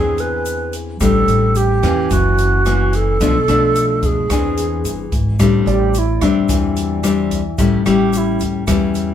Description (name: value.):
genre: bossa nova.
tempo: 110 BPM.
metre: 4/4.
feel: straight.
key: A minor.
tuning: A4 = 439 Hz.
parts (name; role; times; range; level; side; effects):
bright alto flute; melody; 0.0-8.4 s; E4 to B4; -18 LUFS; right 4 dB; none.
nylon-string guitar; accompaniment; 0.0-9.1 s; F#2 to G#4; -17 LUFS; left 4 dB; none.
upright bass; bass; 0.0-9.1 s; F#1 to F2; -20 LUFS; equal; none.
open jazz drum kit; drums; 0.2-9.1 s; hi-hat, kick drum, rim click; -23 LUFS; equal; none.
egg shaker; percussion; 0.2-9.1 s; none; -34 LUFS; left 8 dB; none.
clear concert grand piano; accompaniment; 5.7-7.8 s; D5 to E5; -28 LUFS; right 8 dB; none.
room: moderate studio ambience, RT60 0.5 s.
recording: heard from further back in the room.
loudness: -13 LUFS.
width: side -10 dB against mid.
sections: 0.0-5.4 A section; 5.4-9.1 B section.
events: alto flute solo 5.4-9.1.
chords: 0.0 E7b13; 1.0 Am7; 2.1 F#7; 3.2 Bm7b5; 4.3 E7alt; 5.4 Am7; 7.6 A7.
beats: 0.46 | 1.00 1.55 2.10 2.65 | 3.20 3.75 4.30 4.84 | 5.39 5.94 6.49 7.04 | 7.58 8.13 8.68.